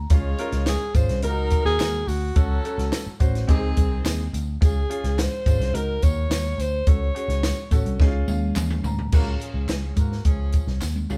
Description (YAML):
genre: uptempo 1960s-style soul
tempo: 106 BPM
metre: 4/4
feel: straight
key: Db major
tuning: A4 = 440 Hz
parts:
  - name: warm upright piano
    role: accompaniment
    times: 0.0-11.2 s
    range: C4 to Bb5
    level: -35 LUFS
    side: equal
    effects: none
  - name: vintage muted picked electric bass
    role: bass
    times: 0.0-11.2 s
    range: Ab1 to Ab2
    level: -27 LUFS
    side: equal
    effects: none
  - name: mellow horn section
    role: second line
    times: 0.1-4.3, 9.1-10.8 s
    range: Eb3 to Db5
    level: -36 LUFS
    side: equal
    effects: none
  - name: compact cocktail drum kit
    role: drums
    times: 0.1-11.2 s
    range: crash cymbal, hi-hat, kick drum, snare drum, toms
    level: -24 LUFS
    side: equal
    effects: none
  - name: tambourine and handclaps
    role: percussion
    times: 0.1-11.2 s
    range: none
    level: -41 LUFS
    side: equal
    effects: none
  - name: warm alto saxophone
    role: melody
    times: 0.7-8.0 s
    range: Gb4 to Db5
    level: -30 LUFS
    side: equal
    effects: none
room: light reverb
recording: band playing live in one room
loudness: -23 LUFS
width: mono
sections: 0.0-9.1 A section; 9.1-11.2 B section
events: drum fill 8.0-9.1, 10.8-11.2; upright piano fill 8.0-9.1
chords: 0.1 Db; 1.2 Ebm/Db; 2.4 Gbm/Db; 3.5 Ab; 4.6 Db; 5.7 Ebm/Db; 6.9 Gbm/Db; 8.0 Db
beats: | 0.11 0.67 1.24 1.80 | 2.36 2.92 3.49 4.05 | 4.61 5.18 5.74 6.30 | 6.87 7.43 7.99 8.55 | 9.12 9.68 10.25 10.81